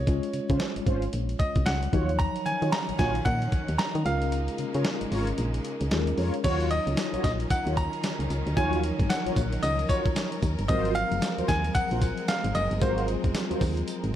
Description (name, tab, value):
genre	R&B, new jack swing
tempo	113 BPM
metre	4/4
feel	swing 60% on 16ths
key	Eb dorian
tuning	A4 = 440 Hz
part	bright grand piano	melody	0.0-14.2 s	C5 to Bb5	-31 LUFS	equal	ping-pong delay
part	tine electric piano	accompaniment	0.0-14.2 s	F3 to Db5	-33 LUFS	left 2 dB	medium stereo tremolo
part	solid FM bass	bass	0.0-14.1 s	Gb1 to Eb3	-28 LUFS	equal	none
part	dusty soul sampler-style drum kit	drums	0.1-14.1 s	crash cymbal, hi-hat, kick drum, snare drum, tambourine	-29 LUFS	equal	none
part	mellow synth brass	stabs	0.5-13.6 s	Db4 to Db5	-34 LUFS	right 1 dB	chorus, phaser
part	clear studio string section	sustained chords	2.2-14.2 s	Db3 to Gb5	-37 LUFS	equal	none
room	light reverb, digital ambience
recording	dark, warm production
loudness	-24 LUFS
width	side -11 dB against mid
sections	0.0-6.4 A section; 6.4-14.2 B section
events	kick muted 4.3-6.4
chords	0.1 Dbmaj7; 1.9 Ebm9; 4.1 Db6; 6.4 Ebm9; 10.7 Ab13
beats	| 0.07 0.60 1.14 1.67 | 2.20 2.73 3.26 3.79 | 4.32 4.85 5.38 5.91 | 6.44 6.97 7.51 8.04 | 8.57 9.10 9.63 10.16 | 10.69 11.22 11.75 12.29 | 12.82 13.35 13.88